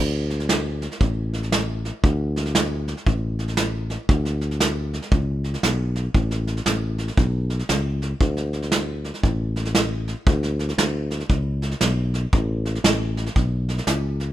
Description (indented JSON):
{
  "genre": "honky-tonk and classic country",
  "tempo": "117 BPM",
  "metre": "4/4",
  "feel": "swing 63% on 8ths",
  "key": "unclear",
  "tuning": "A4 = 440 Hz",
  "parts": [
    { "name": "fingered electric bass", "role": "bass", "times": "0.0-14.3 s", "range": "A1 to D2", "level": "-23 LUFS", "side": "left 1 dB", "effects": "none" },
    { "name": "soft brush drum kit", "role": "drums", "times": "0.3-14.2 s", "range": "hi-hat, kick drum, snare drum", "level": "-22 LUFS", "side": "right 1 dB", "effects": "none" }
  ],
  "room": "little or no reverb",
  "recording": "minimal, uncompressed stereo recording",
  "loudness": "-20 LUFS",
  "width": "side -13 dB against mid",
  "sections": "0.0-14.3 A section",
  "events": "none",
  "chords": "none"
}